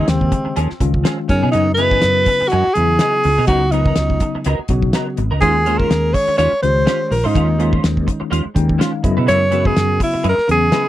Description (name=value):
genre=electric jazz fusion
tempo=124 BPM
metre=4/4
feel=swing 56% on 16ths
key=unclear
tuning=A4 = 444 Hz
part: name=breathy alto saxophone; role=melody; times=0.0-10.9 s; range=C4 to Db5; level=-16 LUFS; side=equal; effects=none
part: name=tine electric piano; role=accompaniment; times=0.0-10.9 s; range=Db3 to G5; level=-22 LUFS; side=left 3 dB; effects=overdrive, fast stereo tremolo
part: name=semi-hollow electric guitar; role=stabs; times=0.0-10.9 s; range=Fb3 to C5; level=-25 LUFS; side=right 2 dB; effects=ensemble chorus
part: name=mellow fretless electric bass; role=bass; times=0.0-10.7 s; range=Ab1 to Cb3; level=-18 LUFS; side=equal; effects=ensemble chorus
part: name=damped 70s drum kit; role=drums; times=0.1-10.8 s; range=hi-hat, kick drum, snare drum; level=-20 LUFS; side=equal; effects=none
room=little or no reverb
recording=dry, close 1970s-style studio recording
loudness=-14 LUFS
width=side -14 dB against mid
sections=0.0-10.9 A section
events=tine electric piano fill 8.3-9.3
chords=0.0 Eb13sus4; 1.3 Gb13sus4; 3.5 Db13sus4; 5.4 Eb13sus4; 9.0 Gb13sus4